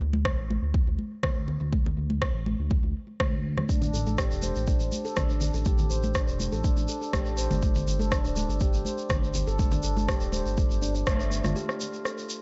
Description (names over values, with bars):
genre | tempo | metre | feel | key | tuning
afro house | 122 BPM | 4/4 | straight | unclear | A4 = 440 Hz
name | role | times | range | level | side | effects
smooth synth bass | bass | 0.0-11.5 s | D1 to A2 | -32 LUFS | equal | tube saturation, sidechain pumping
congas | percussion | 0.1-11.5 s | none | -36 LUFS | equal | tape echo
electronic kick drum | drums | 0.3-11.2 s | none | -30 LUFS | equal | studio reverb
electronic rim click | drums | 0.3-12.2 s | none | -36 LUFS | equal | low-pass filter on snare, studio reverb
handpan | arpeggios | 3.7-11.5 s | A3 to C5 | -36 LUFS | equal | sidechain pumping, tape echo
tube shaker | percussion | 3.7-12.4 s | none | -42 LUFS | equal | tape echo
kalimba | melody | 11.6-12.4 s | G4 to A4 | -40 LUFS | equal | tape echo
room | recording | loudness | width
light reverb, small room ambience | echo-heavy mix, nothing above 7.9 kHz | -27 LUFS | mono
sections
0.0-11.6 A section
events
band accent 11.1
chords
0.0 D5; 3.7 N.C.; 7.6 G5; 11.6 N.C.